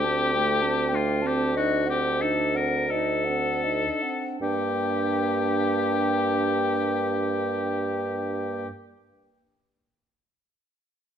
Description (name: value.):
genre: classical, slow romantic movement for wind quintet.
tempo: 38-52 BPM.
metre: 4/4.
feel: rubato.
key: G minor.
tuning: A4 = 440 Hz.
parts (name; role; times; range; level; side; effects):
concert flute; melody; 0.0-8.7 s; Eb5 to A5; -31 LUFS; left 10 dB; none.
clear oboe; second line; 0.0-8.7 s; F4 to Bb4; -28 LUFS; left 4 dB; none.
mellow French horn; accompaniment; 0.0-8.7 s; A3 to D4; -33 LUFS; equal; none.
warm clarinet; accompaniment; 0.0-8.7 s; C4 to Eb4; -32 LUFS; right 8 dB; none.
dark bassoon; bass; 0.0-8.7 s; D2 to G2; -27 LUFS; right 4 dB; none.
room: moderate recital hall reverb, RT60 1.4 s.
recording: none.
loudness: -23 LUFS.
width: side -8 dB against mid.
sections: 0.0-4.4 A section; 4.4-10.4 B section.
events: slowing down 0.0-4.4.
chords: 0.0 D7sus4; 1.6 D7b9; 4.4 Gm.